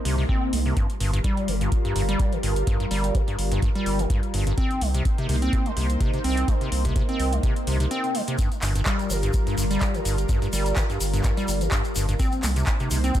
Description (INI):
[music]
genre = acid house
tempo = 126 BPM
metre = 4/4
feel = swing 55% on 16ths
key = G minor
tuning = A4 = 440 Hz
[part]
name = lush unison pad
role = sustained chords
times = 0.0-13.2 s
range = G3 to C5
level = -30 LUFS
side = equal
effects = chorus, phaser, sidechain pumping
[part]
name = acid bass, square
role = riff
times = 0.1-13.2 s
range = G2 to C4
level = -27 LUFS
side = equal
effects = overdrive, lush chorus, ping-pong delay
[part]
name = saturated sub bass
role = bass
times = 0.1-13.1 s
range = G1 to C2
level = -25 LUFS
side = equal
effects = tube saturation, sidechain pumping
[part]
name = booming analog drum machine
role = drums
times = 0.1-13.2 s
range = handclaps, hi-hat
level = -32 LUFS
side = equal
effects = none
[part]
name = electronic kick drum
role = drums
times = 0.3-13.2 s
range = none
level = -24 LUFS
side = equal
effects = none
[part]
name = tube shaker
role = percussion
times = 8.4-13.2 s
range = none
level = -35 LUFS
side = left 3 dB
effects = none
[sound]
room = digital ambience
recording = none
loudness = -21 LUFS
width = side -12 dB against mid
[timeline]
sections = 0.0-13.2 A section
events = break 7.9-8.4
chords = 0.0 Cm7; 0.8 Gm7; 4.6 Cm7; 8.4 Gm7; 12.2 Cm7